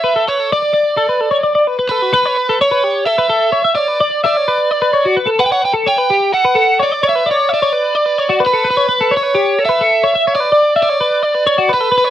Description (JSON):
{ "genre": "rock", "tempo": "258 BPM (eighths)", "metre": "7/8", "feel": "straight", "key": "unclear", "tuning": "A4 = 445 Hz", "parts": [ { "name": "overdriven electric guitar", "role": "melody", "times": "0.0-12.1 s", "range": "B4 to G5", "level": "-15 LUFS", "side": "right 3 dB", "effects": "slapback echo" }, { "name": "twelve-string electric guitar", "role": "arpeggios", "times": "0.0-12.1 s", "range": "F#4 to E5", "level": "-14 LUFS", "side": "left 3 dB", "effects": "analog chorus, slapback echo" } ], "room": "light reverb", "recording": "dry, close 1970s-style studio recording", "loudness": "-11 LUFS", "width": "side -11 dB against mid", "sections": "0.0-2.1 A section; 2.1-12.1 B section", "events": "none", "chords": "0.0 Aadd9; 0.5 D5; 2.1 A9; 3.8 Bmadd9; 5.4 Gmaj9; 7.0 N.C.; 8.7 A9; 10.3 Bmadd9" }